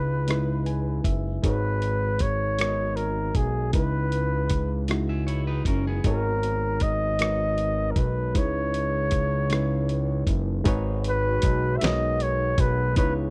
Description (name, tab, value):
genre	slow six-eight R&B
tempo	52 BPM (dotted quarters)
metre	6/8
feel	straight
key	unclear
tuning	A4 = 440 Hz
part	breathy flugelhorn	melody	0.0-13.1 s	G#4 to E5	-30 LUFS	equal	slapback echo
part	barky reed electric piano	accompaniment	0.0-13.3 s	C#3 to G#5	-33 LUFS	equal	none
part	fat analog bass	bass	0.0-13.3 s	F#1 to C#2	-29 LUFS	equal	none
part	dusty soul sampler-style drum kit	drums	0.3-13.1 s	hi-hat, kick drum, rim click, snare drum	-28 LUFS	equal	none
part	electric guitar at the edge of break-up	second line	5.1-6.2 s	B3 to E5	-36 LUFS	equal	none
part	mellow brass ensemble	sustained chords	10.7-13.3 s	C#3 to F#4	-40 LUFS	equal	none
room	little or no reverb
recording	dry, close 1970s-style studio recording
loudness	-25 LUFS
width	mono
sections	0.0-10.7 A section; 10.7-13.3 B section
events	reed electric piano fill 0.3-1.4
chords	0.0 C#m7; 1.4 G#m11; 3.7 C#m7; 6.0 G#m11; 8.4 C#m7; 10.7 G#m11